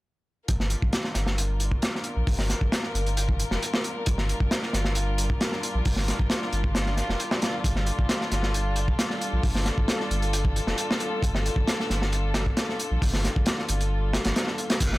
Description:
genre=breakbeat, breaks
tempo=134 BPM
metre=4/4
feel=straight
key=G minor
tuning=A4 = 440 Hz
part: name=warm chamber string section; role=sustained chords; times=0.5-15.0 s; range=G3 to Bb4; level=-31 LUFS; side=left 1 dB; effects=vintage 12-bit sampler grit, sidechain pumping
part: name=saturated sub bass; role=bass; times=0.5-15.0 s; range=F1 to Bb1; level=-27 LUFS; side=equal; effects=none
part: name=crunchy breakbeat drum kit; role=drums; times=0.5-15.0 s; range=crash cymbal, hi-hat, kick drum, snare drum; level=-26 LUFS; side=equal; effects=none
room=little or no reverb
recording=none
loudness=-23 LUFS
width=side -19 dB against mid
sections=0.5-14.8 A section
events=none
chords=0.5 Gm7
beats=| 0.48 0.93 1.38 1.82 | 2.27 2.72 3.17 3.62 | 4.06 4.51 4.96 5.41 | 5.86 6.30 6.75 7.20 | 7.65 8.09 8.54 8.99 | 9.44 9.88 10.33 10.78 | 11.23 11.68 12.12 12.57 | 13.02 13.47 13.91 14.36 | 14.81

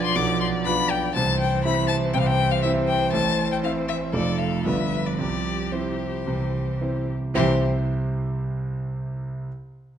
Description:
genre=quick classical-period movement for piano quartet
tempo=110-123 BPM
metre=4/4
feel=straight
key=C major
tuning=A4 = 440 Hz
part: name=rich violin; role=melody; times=0.0-7.6 s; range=C5 to D6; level=-27 LUFS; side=left 8 dB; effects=none
part: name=rich cello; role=second line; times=0.0-7.6 s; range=E3 to F3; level=-29 LUFS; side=right 8 dB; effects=none
part: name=rich violin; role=second line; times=0.0-7.6 s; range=G4 to D5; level=-30 LUFS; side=left 2 dB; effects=none
part: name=clear concert grand piano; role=accompaniment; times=0.0-9.5 s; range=F1 to E5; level=-24 LUFS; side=right 1 dB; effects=none
room=moderate recital hall reverb, RT60 1.7 s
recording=dark, warm production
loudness=-21 LUFS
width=side -9 dB against mid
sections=0.0-7.4 A section; 7.4-9.5 B section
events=none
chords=0.0 Bdim; 1.2 C; 3.1 Am; 4.1 Dm/F; 4.7 G7; 5.2 C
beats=0.16 0.66 | 1.16 1.65 2.14 2.64 | 3.14 3.64 4.14 4.66 | 5.19 5.73 6.27 6.81 | 7.35 7.88 8.41 8.94

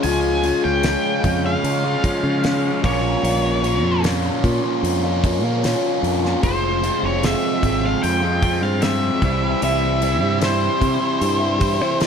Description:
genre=psychedelic rock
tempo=75 BPM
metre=4/4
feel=straight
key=unclear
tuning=A4 = 445 Hz
part: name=octave-fuzz lead guitar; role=melody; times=0.0-12.0 s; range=C5 to Ab5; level=-24 LUFS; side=equal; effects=distortion, analog delay
part: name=overdriven combo organ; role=sustained chords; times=0.0-12.1 s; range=E4 to F5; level=-29 LUFS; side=right 3 dB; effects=none
part: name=overdriven electric guitar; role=riff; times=0.0-12.1 s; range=F2 to F4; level=-20 LUFS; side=left 1 dB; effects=phaser
part: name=fingered electric bass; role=bass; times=0.0-12.1 s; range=F1 to Db3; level=-23 LUFS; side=equal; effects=none
part: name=damped 70s drum kit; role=drums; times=0.0-12.1 s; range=hi-hat, kick drum, snare drum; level=-25 LUFS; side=equal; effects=none
room=light reverb, small room ambience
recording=none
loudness=-17 LUFS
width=side -7 dB against mid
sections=0.0-12.1 A section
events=none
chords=0.0 Db; 2.8 Bbm; 6.4 Fm; 9.2 C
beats=| 0.04 0.84 1.64 2.44 | 3.24 4.04 4.83 5.63 | 6.43 7.23 8.03 8.82 | 9.62 10.42 11.21 12.01

